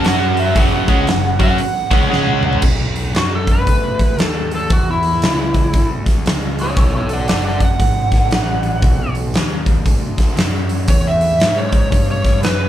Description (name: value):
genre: blues rock power trio and southern rock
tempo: 116 BPM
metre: 4/4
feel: swing 63% on 8ths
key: unclear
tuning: A4 = 442 Hz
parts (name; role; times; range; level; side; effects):
- overdriven slide guitar; melody; 0.0-12.7 s; E4 to F#5; -20 LUFS; equal; slapback echo
- overdriven electric guitar; riff; 0.0-2.6 s; F#2 to F#4; -17 LUFS; equal; none
- fuzz picked electric bass; bass; 0.0-12.7 s; F#1 to G#2; -20 LUFS; equal; overdrive
- huge arena drum kit; drums; 0.0-12.6 s; crash cymbal, hi-hat, kick drum, snare drum, toms; -16 LUFS; equal; none
room: light reverb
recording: live gig heard through the venue's PA, club ambience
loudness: -13 LUFS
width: side -12 dB against mid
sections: 0.0-2.6 A section; 2.6-12.7 B section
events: drum fill 2.1-2.6; electric slide guitar solo 2.6-12.7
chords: 0.1 F#5; 2.1 C#5; 2.6 B; 4.7 E7(no3); 6.8 B7#9; 10.9 E(#9)